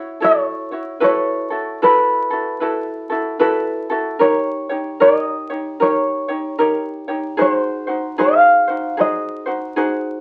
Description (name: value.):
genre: Hawaiian.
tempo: 75 BPM.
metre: 4/4.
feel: swing 62% on 8ths.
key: unclear.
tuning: A4 = 440 Hz.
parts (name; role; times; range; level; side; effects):
tenor ukulele; melody; 0.0-10.2 s; B4 to E#5; -18 LUFS; equal; none.
ukulele; accompaniment; 0.0-10.2 s; D#4 to C#5; -22 LUFS; equal; none.
room: wet studio reverb, RT60 0.6 s.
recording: very old 78 rpm record, vinyl crackle.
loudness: -18 LUFS.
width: mono.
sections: 0.0-10.2 A section.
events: none.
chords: 0.0 F#m7; 1.0 B7sus4; 4.2 D#7; 7.4 G#7.